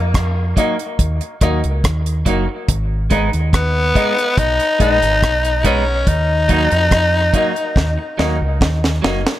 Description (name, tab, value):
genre	dub reggae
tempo	71 BPM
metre	4/4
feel	straight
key	Eb minor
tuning	A4 = 440 Hz
part	breathy tenor saxophone	melody	0.0-8.6 s	Bb3 to Eb4	-18 LUFS	left 2 dB	dub echo
part	deep dub fingered electric bass	bass	0.0-9.2 s	Gb1 to F2	-18 LUFS	equal	none
part	deep reggae drum kit	drums	0.1-9.4 s	hi-hat, kick drum, rim click, snare drum	-18 LUFS	equal	none
part	clean electric guitar	accompaniment	0.6-9.3 s	Gb3 to Eb4	-24 LUFS	right 5 dB	dub echo
part	warm upright piano	stabs	0.6-9.2 s	Eb4 to Eb5	-25 LUFS	left 4 dB	dub echo
room	moderate spring reverb, RT60 2.6 s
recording	none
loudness	-14 LUFS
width	side -14 dB against mid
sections	0.0-9.4 A section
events	drum fill 7.8-9.4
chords	0.0 Ebm; 2.7 Abm; 6.1 Ebm